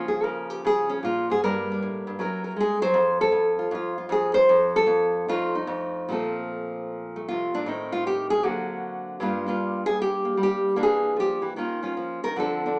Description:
solo jazz; 154 BPM; 4/4; swing 66% on 8ths, rubato; F major, Bb major from 6.1 s; A4 = 439 Hz
nylon-string guitar; solo; 0.0-12.8 s; F2 to C5; -25 LUFS; equal
moderate stone room reverb, RT60 1.2 s; band playing live in one room, small speaker sound; -25 LUFS; mono
0.0-6.1 A section; 6.1-12.8 A section
nylon-string guitar solo 0.0-12.8
0.0 Db6; 1.4 Gmadd9; 2.2 Gb9; 2.9 N.C.; 5.3 F6; 6.1 Bbsus2; 7.7 Adim; 8.4 D7b13; 9.2 Gm7; 10.8 E7#11; 11.6 Ebsus2

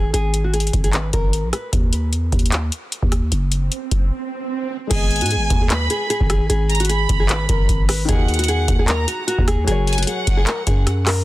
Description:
hip hop, trap; 151 BPM; 4/4; half-time; G# minor; A4 = 440 Hz
nylon-string guitar; melody; 0.0-1.7, 4.9-11.2 s; F#4 to B4; -24 LUFS; left 1 dB; digital delay
growling 808-style bass; bass; 0.0-11.2 s; F#1 to G#2; -20 LUFS; equal
booming analog drum machine; drums; 0.1-11.2 s; crash cymbal, handclaps, hi-hat, kick drum, rim click; -20 LUFS; equal
swell; sound effects; 3.6-4.9 s; -27 LUFS; right 8 dB
warm chamber violin section; second line; 4.9-10.8 s; F#5 to B5; -25 LUFS; right 3 dB; digital delay
dark baby grand piano; accompaniment; 4.9-11.2 s; D#3 to D#5; -29 LUFS; left 5 dB
studio ambience; dense, heavily limited modern master; -16 LUFS; side -17 dB against mid
0.0-4.9 A section; 4.9-11.2 B section
swell 3.6-4.9; break 4.1-4.9
0.0 G#5; 1.7 N.C.; 4.9 G#m; 8.1 D#m; 9.7 F#

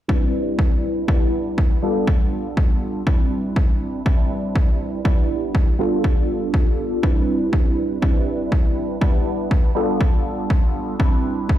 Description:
filtered disco house; 121 BPM; 4/4; swing 54% on 16ths; A4 = 440 Hz
funky polysynth comp; accompaniment; 0.1-11.6 s; G3 to B4; -22 LUFS; right 1 dB; chorus, phaser, vintage 12-bit sampler grit, sidechain pumping, low-pass filter
electronic kick drum; drums; 0.1-11.6 s; -19 LUFS; equal
tambourine; percussion; 0.1-11.6 s; -66 LUFS; left 6 dB
digital ambience; played on a big sound system in a bare room, stone room reverb; -17 LUFS; side -12 dB against mid
0.1-11.6 A section
filter sweep 0.1-11.6
0.1 Cmaj9/G; 1.1 Em7; 1.8 G9; 3.1 Cmaj9/G; 5.1 Em7; 5.8 G9; 7.0 Cmaj9/G; 9.0 Em7; 9.8 G9; 11.0 Cmaj9/G

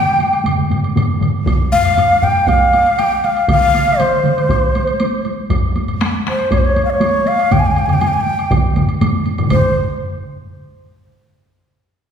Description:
japanese traditional, taiko drum ensemble; 119 BPM; 4/4; straight; C miyako bushi; A4 = 440 Hz
breathy shakuhachi; melody; 0.0-9.7 s; C5 to Ab5; -14 LUFS; left 1 dB
taiko ensemble; percussion; 0.1-9.7 s; -22 LUFS; right 1 dB
woodblock; percussion; 0.2-9.7 s; -28 LUFS; right 3 dB
taiko ensemble; percussion; 0.4-4.4, 7.5-10.0 s; -21 LUFS; right 4 dB
taiko ensemble; percussion; 0.5-2.3, 5.5-10.0 s; -20 LUFS; left 3 dB
taiko ensemble; percussion; 1.5-9.7 s; -20 LUFS; right 1 dB
wet recital hall reverb, RT60 1.8 s; recorded in a church or concert hall; -12 LUFS; side -7 dB against mid
0.0-9.5 A section; 9.5-11.5 B section

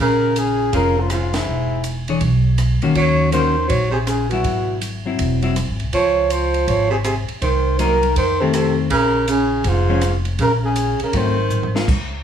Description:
jazz, small-group swing and bop; 161 BPM; 4/4; swing 64% on 8ths; Bb minor; A4 = 440 Hz
trumpet with bucket mute; melody; 0.0-11.7 s; E4 to Db5; -21 LUFS; left 1 dB
clear baritone saxophone; second line; 0.0-11.7 s; Ab2 to Gb3; -22 LUFS; right 4 dB
upright bass; bass; 0.0-12.2 s; E1 to F2; -21 LUFS; equal
compact cocktail drum kit; drums; 0.4-12.0 s; crash cymbal, hi-hat, kick drum, ride cymbal, rim click, snare drum, toms; -27 LUFS; right 2 dB
hollow-body jazz guitar; accompaniment; 0.7-5.6, 7.8-11.9 s; Eb3 to C#5; -22 LUFS; left 4 dB
light reverb; studio ambience; -16 LUFS; side -8 dB against mid
0.0-11.9 A section
band accent 1.3; drum fill 11.5-11.9
0.0 Bbm7; 1.5 E6; 3.0 Ebm7; 4.4 Ab7alt; 5.9 Dbmaj7; 7.4 Cm7b5; 8.2 F7; 8.9 Bbm7; 11.1 Ab7b9

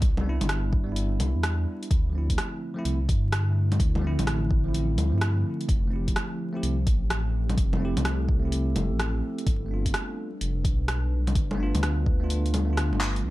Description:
future garage; 127 BPM; 4/4; swing 66% on 16ths; A4 = 443 Hz
dark detuned saw bass; bass; 0.0-13.3 s; F1 to G2; -26 LUFS; equal; sidechain pumping
deep house drum kit; drums; 0.0-13.2 s; bongos, handclaps, hi-hat, rim click; -31 LUFS; equal; low-pass filter on hats, low-pass filter on perc, low-pass filter on snare, low-pass filter on room
electronic kick drum; drums; 0.0-12.2 s; -25 LUFS; equal
bell-like tine electric piano; accompaniment; 0.2-13.3 s; E3 to G4; -33 LUFS; right 2 dB; medium stereo tremolo, sidechain pumping, dub echo
warbly tape-like pad; sustained chords; 2.6-13.3 s; C3 to B4; -34 LUFS; left 1 dB; chorus, built-in reverb, sidechain pumping
digital ambience; vinyl crackle; -23 LUFS; side -17 dB against mid
0.0-13.2 A section
drum fill 13.0
0.0 Cmaj9; 1.9 Dm7; 5.7 Fmaj9; 9.5 G9

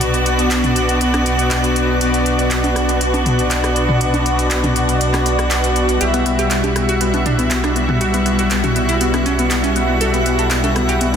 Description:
progressive house; 120 BPM; 4/4; straight; B minor; A4 = 445 Hz
warm studio string section; sustained chords; 0.0-11.2 s; G3 to F#4; -22 LUFS; left 1 dB
soft supersaw; stabs; 0.0-11.2 s; B2 to E5; -18 LUFS; left 1 dB; phaser, dub echo
round analog bass; bass; 0.0-11.2 s; B1; -21 LUFS; right 1 dB
deep house drum kit; drums; 0.0-11.2 s; handclaps, hi-hat; -23 LUFS; equal; studio reverb
drifting glass-harmonics texture; texture; 0.0-11.2 s; F#5 to F#6; -27 LUFS; right 3 dB; chorus, built-in reverb
punchy analog drum machine; percussion; 0.6-11.2 s; congas, rim click, toms; -23 LUFS; equal; studio reverb, soft clipping on snare
glassy wavetable pluck; arpeggios; 6.0-11.2 s; B3 to A4; -20 LUFS; left 1 dB; chorus, dub echo
light reverb; dense, heavily limited modern master; -14 LUFS; side -8 dB against mid
0.0-11.2 A section
0.0 Bm; 6.0 Emadd9/B

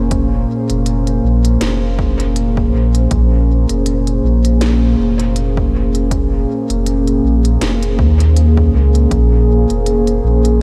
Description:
ambient dub; 80 BPM; 4/4; swing 56% on 16ths; Bb minor; A4 = 439 Hz
warbly tape-like pad; sustained chords; 0.0-10.6 s; Bb2 to C5; -19 LUFS; equal; chorus, built-in reverb, vintage 12-bit sampler grit
warm sub bass; bass; 0.0-10.6 s; F1 to Eb2; -16 LUFS; equal; tube saturation
electronic kick drum; drums; 0.1-9.3 s; -22 LUFS; equal; overdrive
organic electronic drum kit; drums; 0.1-10.6 s; hi-hat, snare drum; -28 LUFS; equal; overdrive, dub echo
moderate huge ambient reverb, RT60 4.1 s; dreamy mix soaked in reverb; -14 LUFS; mono
0.0-10.6 A section
0.0 Bbm9

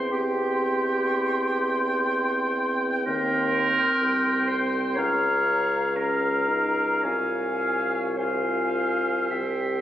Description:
classical, slow romantic movement for wind quintet; 52-64 BPM; 4/4; rubato; A4 = 440 Hz
hollow concert flute; melody; 0.0-9.8 s; G5 to C6; -31 LUFS; left 2 dB
bright clarinet; accompaniment; 0.0-9.8 s; G4 to Db5; -28 LUFS; right 3 dB
mellow French horn; accompaniment; 0.0-9.8 s; C4 to G4; -32 LUFS; left 1 dB
mellow bassoon; bass; 0.0-9.8 s; C2 to E2; -28 LUFS; equal
clear oboe; second line; 0.1-9.8 s; E5 to G5; -27 LUFS; equal
wet recital hall reverb, RT60 1.7 s; recorded on a phone in the room, studio ambience, compression; -22 LUFS; side -12 dB against mid
0.0-9.8 A section
0.0 C/E; 3.1 Cm/Eb; 5.0 Bbm/Db; 7.0 Fm/C; 9.3 C

